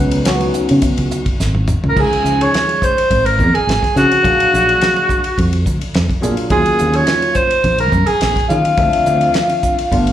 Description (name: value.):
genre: electric jazz fusion.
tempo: 106 BPM.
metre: 4/4.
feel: straight.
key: Db major.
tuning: A4 = 440 Hz.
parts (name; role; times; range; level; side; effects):
barky tine electric piano; accompaniment; 0.0-10.1 s; F3 to F5; -19 LUFS; left 1 dB; phaser, slapback echo.
fingered electric bass; bass; 0.0-10.1 s; G1 to Eb3; -16 LUFS; equal; none.
damped 70s drum kit; drums; 0.1-10.1 s; crash cymbal, hi-hat, kick drum, ride cymbal, snare drum, toms; -20 LUFS; equal; none.
breathy alto saxophone; melody; 1.9-10.1 s; F4 to Db5; -14 LUFS; equal; slapback echo.
room: light reverb.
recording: live gig heard through the venue's PA, club reverb.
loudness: -12 LUFS.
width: side -11 dB against mid.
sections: 0.0-2.0 A section; 2.0-10.1 B section.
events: drum fill 1.4-2.0.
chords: 0.0 Db9sus4; 2.0 Dbadd9; 4.2 Bb7b13; 6.5 Ebm9; 8.8 Dm7.